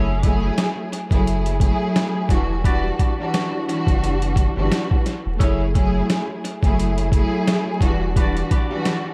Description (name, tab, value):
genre	hip hop, boom-bap hip-hop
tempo	87 BPM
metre	4/4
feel	swing 56% on 16ths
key	F# phrygian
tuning	A4 = 441 Hz
part	warm studio string section	accompaniment	0.0-9.1 s	E3 to G#4	-25 LUFS	equal	cassette tape, tape echo
part	edgy saxophone section	stabs	0.0-8.4 s	C#4 to D5	-35 LUFS	equal	tape echo
part	saturated sub bass	bass	0.0-8.4 s	E1 to G1	-25 LUFS	equal	none
part	boom bap sampler-style drum kit	drums	0.2-9.0 s	hi-hat, kick drum, snare drum	-23 LUFS	equal	tape echo
room	digital ambience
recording	echo-heavy mix, vinyl crackle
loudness	-20 LUFS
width	mono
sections	0.0-9.1 A section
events	none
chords	0.0 F#m9; 2.3 Em9; 5.4 F#m9; 7.8 Em9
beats	0.58 1.27 1.96 | 2.65 3.33 4.02 4.71 | 5.40 6.09 6.78 7.47 | 8.16 8.85